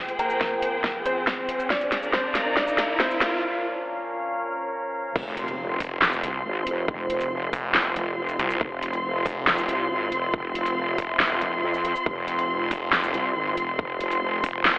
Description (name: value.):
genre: heavy wobble dubstep.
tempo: 139 BPM.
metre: 4/4.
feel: half-time.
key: F harmonic minor.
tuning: A4 = 436 Hz.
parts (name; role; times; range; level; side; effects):
evolving wavetable pad; sustained chords; 0.1-14.8 s; F2 to G5; -32 LUFS; equal; phaser, built-in reverb, sidechain pumping.
riser and impact; sound effects; 0.6-6.9 s; none; -32 LUFS; equal; none.
dark symphonic string section; texture; 0.0-14.8 s; C4 to C6; -28 LUFS; equal; sidechain pumping.
big-room dance drum kit; drums; 0.1-14.7 s; crash cymbal, handclaps, hi-hat, shaker, snare drum; -24 LUFS; equal; overdrive.
warm grand piano; melody; 0.2-3.4 s; Bb3 to D5; -28 LUFS; equal; low-pass filter.
electronic kick drum; drums; 0.4-14.5 s; none; -27 LUFS; equal; overdrive.
wobble bass; bass; 5.2-14.4 s; F1 to F2; -29 LUFS; equal; chorus, overdrive.
snarling distorted saw bass; bass; 5.8-14.8 s; F1 to C2; -27 LUFS; equal; distortion, overdrive.
room: moderate lush hall reverb, RT60 1.9 s, digital ambience.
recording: high-pass filter, telephone sound.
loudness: -22 LUFS.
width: side -22 dB against mid.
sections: 0.0-5.2 A section; 5.2-14.8 B section.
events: build-up 0.0-5.2; drum fill 0.0-3.4; filter sweep on ambient pad 0.0-5.2; filter sweep 0.0-5.2; riser 0.6-3.4; break 3.4-5.2; drop 5.2-14.8; impact 5.2-6.9.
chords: 0.0 Fmadd9; 1.7 Bb; 3.4 Bbm; 5.2 F5.